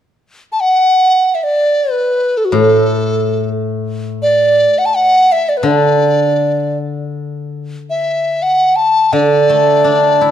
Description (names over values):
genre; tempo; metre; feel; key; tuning
chinese traditional; free time; none; none; D gong mode; A4 = 438 Hz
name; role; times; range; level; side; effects
hollow large dizi; melody; 0.5-10.3 s; F#4 to A5; -11 LUFS; right 1 dB; none
steel-string zither; accompaniment; 2.5-10.3 s; A2 to E4; -15 LUFS; left 2 dB; none
room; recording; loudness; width
moderate recital hall reverb, RT60 1.7 s; dark, warm production; -10 LUFS; side -10 dB against mid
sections
0.0-10.3 A section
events
none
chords
none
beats
free time